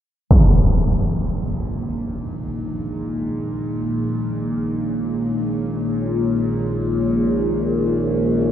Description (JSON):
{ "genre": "dark ambient drone", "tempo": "free time", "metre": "none", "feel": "none", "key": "unclear", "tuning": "A4 = 440 Hz", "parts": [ { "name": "dark analog pad", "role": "sustained chords", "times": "1.2-8.5 s", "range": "Bb3 to Db5", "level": "-23 LUFS", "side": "equal", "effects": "chorus" }, { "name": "overtone-sweeping drone", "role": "drone", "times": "1.6-8.5 s", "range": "Bb1 to Bb2", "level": "-24 LUFS", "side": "left 1 dB", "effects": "chorus, built-in reverb, phaser" }, { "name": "impact", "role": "percussion", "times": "0.3-0.5 s", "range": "none", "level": "-18 LUFS", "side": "equal", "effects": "low-pass filter on sfx" } ], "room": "wet cathedral reverb, RT60 6.3 s", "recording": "none", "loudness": "-18 LUFS", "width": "side -10 dB against mid", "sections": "0.3-8.5 A section", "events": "fade-in on synth drone 0.3-8.5; fade-in on analog synth pad 0.3-8.5", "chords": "0.3 Absus24/Bb" }